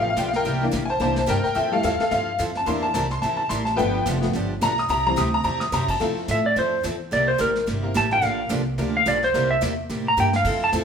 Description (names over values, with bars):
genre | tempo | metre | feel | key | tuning
country, western swing | 216 BPM | 4/4 | swing 59% on 8ths | unclear | A4 = 440 Hz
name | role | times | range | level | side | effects
picked steel-string acoustic guitar | accompaniment | 0.0-10.8 s | C3 to Bb4 | -29 LUFS | right 2 dB | none
tack piano | accompaniment | 0.0-10.8 s | E3 to Eb6 | -23 LUFS | left 2 dB | none
upright bass | bass | 0.0-10.8 s | F1 to A2 | -28 LUFS | right 1 dB | none
vintage brush drum kit | drums | 0.2-10.8 s | brushed snare drum, crash cymbal, hi-hat, kick drum, snare drum | -33 LUFS | equal | none
clean lap steel guitar | melody | 6.3-10.7 s | Bb4 to Bb5 | -21 LUFS | right 1 dB | none
room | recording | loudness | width
wet large studio reverb, RT60 1.2 s | band playing live in one room | -20 LUFS | side -7 dB against mid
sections
0.0-6.0 A section; 6.0-10.8 A section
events
honky-tonk piano solo 0.0-6.0; drum fill 5.4, 10.2; electric slide guitar solo 6.0-10.8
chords
0.4 C7; 1.6 Fmaj7; 2.7 C7; 3.8 G7; 4.9 C; 6.0 Fmaj7; 7.1 C7; 8.2 Bb6; 9.3 C7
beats
0.16 | 0.44 0.72 1.00 1.28 | 1.55 1.83 2.11 2.39 | 2.67 2.95 3.22 3.50 | 3.78 4.06 4.34 4.61 | 4.89 5.17 5.45 5.73 | 6.00 6.28 6.56 6.84 | 7.12 7.39 7.67 7.95 | 8.23 8.51 8.78 9.06 | 9.34 9.62 9.89 10.17 | 10.45 10.73